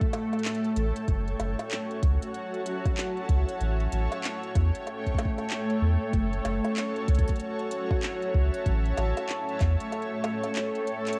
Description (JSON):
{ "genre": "IDM", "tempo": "95 BPM", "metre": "4/4", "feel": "swing 62% on 16ths", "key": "unclear", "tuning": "A4 = 440 Hz", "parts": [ { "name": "granular cloud pad", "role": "sustained chords", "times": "0.0-11.2 s", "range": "A3 to A5", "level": "-32 LUFS", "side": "equal", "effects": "built-in reverb, sidechain pumping, cassette tape" }, { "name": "electronic kick drum", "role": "drums", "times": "0.0-9.8 s", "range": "none", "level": "-30 LUFS", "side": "equal", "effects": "overdrive, studio reverb, cassette tape" }, { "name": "organic electronic drum kit", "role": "drums", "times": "0.0-11.2 s", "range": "bongos, handclaps, hi-hat", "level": "-38 LUFS", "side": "equal", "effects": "overdrive, studio reverb, cassette tape" }, { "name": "warm sub bass", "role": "bass", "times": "0.8-9.8 s", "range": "F#1 to E2", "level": "-28 LUFS", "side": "equal", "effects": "none" } ], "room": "light reverb, digital ambience", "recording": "home recording on cassette", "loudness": "-28 LUFS", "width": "mono", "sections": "0.0-11.2 A section", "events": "break 9.9-11.2; drum fill 10.9-11.2", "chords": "0.0 A7; 1.1 F#m7; 3.6 A7; 6.1 F#m7; 8.7 A7", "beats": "0.45 | 1.08 1.71 2.34 2.98 | 3.61 4.24 4.87 5.50 | 6.13 6.76 7.40 8.03 | 8.66 9.29 9.92 10.55 | 11.19" }